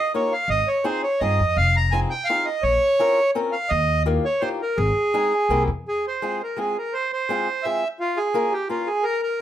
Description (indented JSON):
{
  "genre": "musette waltz",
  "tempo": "168 BPM",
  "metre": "3/4",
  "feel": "straight",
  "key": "Ab major, F harmonic minor from 5.8 s",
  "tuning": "A4 = 439 Hz",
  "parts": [
    { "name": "accordion", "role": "melody", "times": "0.0-9.4 s", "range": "F4 to Bb5", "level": "-21 LUFS", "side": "right 1 dB", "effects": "slapback echo" },
    { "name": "fingerpicked swing-style acoustic guitar", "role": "accompaniment", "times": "0.1-8.9 s", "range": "Ab3 to Bb4", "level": "-26 LUFS", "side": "left 3 dB", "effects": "none" },
    { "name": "upright bass", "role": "bass", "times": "0.5-5.8 s", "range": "F1 to G2", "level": "-22 LUFS", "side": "left 1 dB", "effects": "none" }
  ],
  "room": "light reverb",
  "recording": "none",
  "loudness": "-20 LUFS",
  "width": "side -11 dB against mid",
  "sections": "0.0-5.8 A section; 5.8-9.4 B section",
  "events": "none",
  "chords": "0.5 Ab6; 1.6 Fm7; 2.6 Bbmadd9; 3.7 Ebadd9; 4.8 Ab; 5.5 C7; 5.8 Fm; 8.0 Bbm"
}